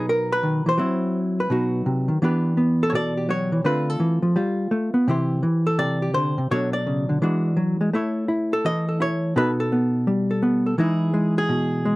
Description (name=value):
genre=solo jazz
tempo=168 BPM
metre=4/4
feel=swing 65% on 8ths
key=unclear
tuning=A4 = 440 Hz
part: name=hollow-body jazz guitar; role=solo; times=0.0-12.0 s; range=B2 to D#5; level=-20 LUFS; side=equal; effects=none
room=light reverb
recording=dry, close 1970s-style studio recording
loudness=-20 LUFS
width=side -20 dB against mid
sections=0.0-2.2 A section; 2.2-12.0 B section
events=none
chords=0.0 Bmaj7; 0.8 Cmaj7#11/F#; 1.5 B; 2.2 Em7; 3.6 Dm7; 4.4 G9; 5.1 C6; 6.5 Bm9; 7.2 E9; 7.9 A; 9.3 Baug7; 10.8 Emaj7